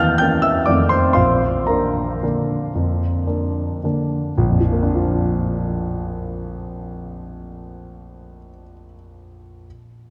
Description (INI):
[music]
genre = classical, piano waltz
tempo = 114 BPM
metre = 3/4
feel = uneven beats, rubato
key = Bb major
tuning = A4 = 439 Hz
[part]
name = warm concert grand piano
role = solo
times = 0.0-9.7 s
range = Bb1 to G6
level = -20 LUFS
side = equal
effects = none
[sound]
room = wet cathedral reverb, RT60 4.4 s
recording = dark, warm production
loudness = -19 LUFS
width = mono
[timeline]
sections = 0.0-4.4 A section; 4.4-7.5 B section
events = slowing down 0.4-4.4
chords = 0.0 Edim7; 0.7 F7; 1.2 Bb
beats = 0.22 0.68 | 1.17 1.69 2.23 | 2.76 3.28 3.83 | 4.38 4.89 5.41 | 5.92 6.44 6.98